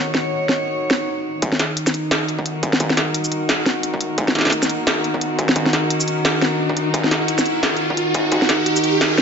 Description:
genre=half-time drum and bass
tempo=174 BPM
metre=4/4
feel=swing 59% on 16ths, half-time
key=Eb minor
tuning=A4 = 439 Hz
part: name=warm symphonic cello section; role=sustained chords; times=0.0-9.2 s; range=Eb3 to Db5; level=-21 LUFS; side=equal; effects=sidechain pumping
part: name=industrial drum kit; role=drums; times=0.1-9.2 s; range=hi-hat, shaker, snare drum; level=-19 LUFS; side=equal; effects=studio reverb
part: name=electronic kick drum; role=drums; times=1.4-8.4 s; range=none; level=-24 LUFS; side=equal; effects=distortion, high-pass filter on kick, studio reverb
part: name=riser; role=sound effects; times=3.4-9.2 s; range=none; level=-24 LUFS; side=equal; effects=none
room=moderate lush hall reverb, RT60 1.8 s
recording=nothing above 7.8 kHz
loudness=-17 LUFS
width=side -6 dB against mid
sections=0.0-1.4 A section; 1.4-9.2 B section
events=build-up 1.4-9.2; riser 3.4-9.2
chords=0.0 Ebm

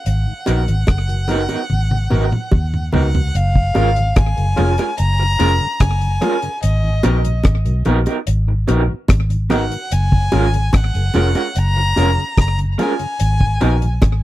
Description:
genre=lovers rock reggae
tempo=73 BPM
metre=4/4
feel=straight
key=F# major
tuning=A4 = 444 Hz
part: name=dark violin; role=melody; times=0.0-14.2 s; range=D#5 to A#5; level=-23 LUFS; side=left 1 dB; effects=tape echo
part: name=vintage muted fingered electric bass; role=bass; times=0.1-14.2 s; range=E#1 to D#2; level=-16 LUFS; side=equal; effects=none
part: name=deep reggae drum kit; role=drums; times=0.1-14.2 s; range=hi-hat, kick drum, rim click, toms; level=-17 LUFS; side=equal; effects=none
part: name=mellow tonewheel organ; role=accompaniment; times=0.3-13.9 s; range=F#2 to F#4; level=-25 LUFS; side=left 2 dB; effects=chorus vibrato, slow rotary speaker
part: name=barky tine electric piano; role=accompaniment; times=0.5-13.7 s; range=B3 to A#4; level=-24 LUFS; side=left 3 dB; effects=overdrive, slapback echo
part: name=electric guitar through a small old amp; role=stabs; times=0.5-13.7 s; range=F#3 to A#4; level=-21 LUFS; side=right 6 dB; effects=tremolo
part: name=bongos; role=percussion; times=0.5-14.2 s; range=none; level=-22 LUFS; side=right 1 dB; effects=none
room=little or no reverb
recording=dry, close 1970s-style studio recording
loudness=-14 LUFS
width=side -15 dB against mid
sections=0.0-3.3 A section; 3.3-14.2 B section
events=drum fill 1.7-3.3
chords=0.1 G#m9; 3.3 F#maj9; 6.6 G#m9; 9.9 F#maj9; 13.2 G#m9

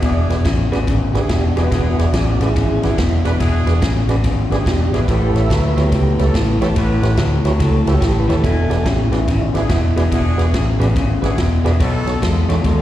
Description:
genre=electric blues shuffle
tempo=143 BPM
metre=4/4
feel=swing 64% on 8ths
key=E mixolydian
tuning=A4 = 440 Hz
part: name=electric guitar through a small old amp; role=riff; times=0.0-12.8 s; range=E2 to G#3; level=-21 LUFS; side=left 5 dB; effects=slapback echo
part: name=clear horn section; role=stabs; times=0.0-12.3 s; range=B3 to G#5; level=-27 LUFS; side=right 1 dB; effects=slapback echo
part: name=vintage muted fingered electric bass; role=bass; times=0.0-12.8 s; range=E1 to E2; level=-17 LUFS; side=equal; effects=none
part: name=swinging big-band drum kit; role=drums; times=0.0-12.8 s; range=kick drum, ride cymbal, snare drum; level=-22 LUFS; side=right 1 dB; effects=none
part: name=mellow tonewheel organ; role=accompaniment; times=0.1-12.8 s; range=B3 to E5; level=-24 LUFS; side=right 5 dB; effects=slow rotary speaker, slapback echo
room=small room ambience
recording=live gig heard through the venue's PA, recital hall reverb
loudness=-14 LUFS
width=side -13 dB against mid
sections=0.0-12.8 A section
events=none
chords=0.0 E9; 5.1 A9; 8.4 E9; 11.8 B9

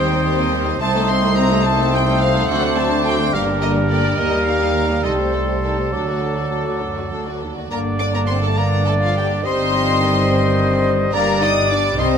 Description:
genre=quick classical-period movement for symphony orchestra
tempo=66-72 BPM (dotted quarters)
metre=6/8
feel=straight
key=G minor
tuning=A4 = 440 Hz
part: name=warm studio violin section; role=melody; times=0.0-12.1 s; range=A4 to Eb6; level=-24 LUFS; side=left 2 dB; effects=none
part: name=clear studio violin section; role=second line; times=0.0-12.2 s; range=C4 to Eb5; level=-27 LUFS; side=left 2 dB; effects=none
part: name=silver concert flute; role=second line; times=0.0-12.2 s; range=C5 to Eb6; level=-26 LUFS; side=left 5 dB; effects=none
part: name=warm oboe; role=second line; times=0.0-12.2 s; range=A4 to Eb5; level=-25 LUFS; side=right 2 dB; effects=none
part: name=mellow bassoon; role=accompaniment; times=0.0-12.2 s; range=D3 to C4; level=-25 LUFS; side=right 2 dB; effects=none
part: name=warm studio viola section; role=accompaniment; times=0.0-12.2 s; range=D3 to F#4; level=-26 LUFS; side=left 1 dB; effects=none
part: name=mellow French horn section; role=sustained chords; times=0.0-12.2 s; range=F3 to G4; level=-24 LUFS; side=left 5 dB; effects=none
part: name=warm studio cello section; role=bass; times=0.0-12.2 s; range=C2 to C3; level=-24 LUFS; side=right 2 dB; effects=none
part: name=warm studio double bass section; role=bass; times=0.0-12.2 s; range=G1 to Eb2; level=-24 LUFS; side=right 2 dB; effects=none
room=light reverb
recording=close, detailed microphones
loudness=-15 LUFS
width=side -7 dB against mid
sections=0.0-7.7 A section; 7.7-12.2 B section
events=none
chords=0.0 Cm/Eb; 0.8 Adim/C; 2.5 D7; 3.3 Gm; 4.2 Eb; 5.0 Am7b5/C; 5.9 D; 7.7 Gm; 9.5 Cm/G; 11.1 G5

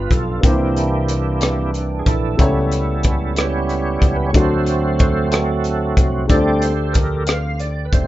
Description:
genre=slow gospel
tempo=61 BPM (dotted quarters)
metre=6/8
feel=straight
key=unclear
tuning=A4 = 440 Hz
part: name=warm baby grand piano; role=accompaniment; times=0.0-8.1 s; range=G2 to D5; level=-24 LUFS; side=left 2 dB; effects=none
part: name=bright tonewheel organ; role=sustained chords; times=0.0-8.1 s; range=E3 to F5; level=-21 LUFS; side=right 3 dB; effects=fast rotary speaker, overdrive, chorus vibrato
part: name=fingered electric bass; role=bass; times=0.0-8.1 s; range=F1 to D2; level=-21 LUFS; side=equal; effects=none
part: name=crisp fusion drum kit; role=drums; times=0.1-8.1 s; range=hi-hat, kick drum, rim click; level=-18 LUFS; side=equal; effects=none
room=little or no reverb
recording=rough home demo mix, nothing above 7.6 kHz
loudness=-15 LUFS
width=side -15 dB against mid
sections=0.0-8.1 A section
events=tonewheel organ solo 0.0-8.1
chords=0.4 C7; 2.4 A7/C#; 4.3 D7; 6.3 D7sus4

